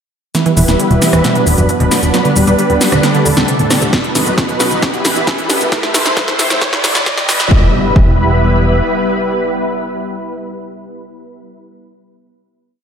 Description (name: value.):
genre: uplifting trance.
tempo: 134 BPM.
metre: 4/4.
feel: straight.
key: E minor.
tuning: A4 = 438 Hz.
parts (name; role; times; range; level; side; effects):
analog string pad; sustained chords; 0.3-11.4 s; F#3 to C5; -16 LUFS; equal; ensemble chorus, sidechain pumping.
wide unison pluck; arpeggios; 0.3-8.1 s; F#2 to A3; -18 LUFS; right 3 dB; wide subtle chorus, sidechain pumping, diffuse ambient delay.
big-room dance drum kit; drums; 0.3-7.5 s; hi-hat, rim click, shaker, snare drum; -15 LUFS; equal; none.
riser and impact; sound effects; 3.9-11.5 s; none; -23 LUFS; equal; none.
tight sequencer bass; bass; 0.6-8.8 s; D1 to E2; -15 LUFS; equal; sidechain pumping.
electronic kick drum; drums; 3.9-8.1 s; none; -13 LUFS; equal; none.
room: wet lush hall reverb, RT60 1.9 s, digital ambience.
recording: dreamy mix soaked in reverb, high-pass filter.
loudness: -10 LUFS.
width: side -7 dB against mid.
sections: 0.3-7.5 build; 7.5-11.1 final chord.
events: build-up 0.3-7.5; drum fill 0.3-7.5; filter sweep 0.3-7.5.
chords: 0.3 Em; 1.2 Bm/E; 2.1 G/E; 3.0 Dsus4/E; 3.9 B/E; 4.8 Em; 5.7 Am/E; 6.6 G; 7.5 Em.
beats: | 0.35 0.80 1.24 1.69 | 2.14 2.59 3.03 3.48 | 3.93 4.38 4.83 5.27 | 5.72 6.17 6.62 7.06 | 7.51 7.96 8.41 8.86 | 9.30 9.75 10.20 10.65.